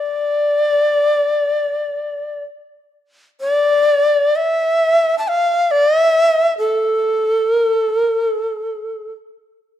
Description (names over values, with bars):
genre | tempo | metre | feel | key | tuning
japanese traditional, Japanese chamber music | free time | none | none | D hirajoshi | A4 = 439 Hz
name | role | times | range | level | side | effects
breathy bright long shakuhachi | solo | 0.0-9.1 s | A4 to A5 | -14 LUFS | left 1 dB | none
room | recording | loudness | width
moderate recital hall reverb, RT60 1.5 s | dark, warm production | -14 LUFS | side -11 dB against mid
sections
0.0-3.4 A section; 3.4-9.8 B section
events
none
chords
none